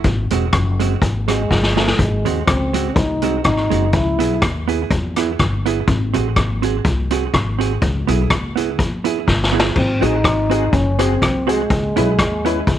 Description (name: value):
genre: ska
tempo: 124 BPM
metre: 4/4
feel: swing 55% on 8ths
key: C# minor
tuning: A4 = 442 Hz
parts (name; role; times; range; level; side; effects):
- upright bass; bass; 0.0-12.8 s; E1 to E2; -20 LUFS; left 1 dB; none
- street-band drum kit; drums; 0.0-12.8 s; crash cymbal, hi-hat, kick drum, rim click, snare drum; -19 LUFS; left 1 dB; none
- hollow-body jazz guitar; accompaniment; 0.3-12.6 s; G#3 to G#4; -22 LUFS; right 13 dB; slapback echo
- breathy trombone; melody; 1.3-4.4, 9.8-12.8 s; G#3 to E4; -21 LUFS; left 1 dB; none
- honky-tonk upright piano; stabs; 10.0-12.6 s; B#3 to B4; -24 LUFS; left 11 dB; none
room: little or no reverb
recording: 1960s-style stereo with parts hard left and right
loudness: -15 LUFS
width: side -11 dB against mid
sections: 0.0-12.8 A section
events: drum fill 1.5-2.0, 9.3-9.8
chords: 0.0 G#7; 3.9 C#m7; 5.9 G#7; 7.8 C#m7; 9.8 G#7; 11.7 C#m7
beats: | 0.05 0.53 1.02 1.50 | 1.99 2.48 2.96 3.45 | 3.93 4.42 4.91 5.39 | 5.88 6.36 6.85 7.33 | 7.82 8.30 8.79 9.27 | 9.76 10.24 10.73 11.21 | 11.70 12.18 12.67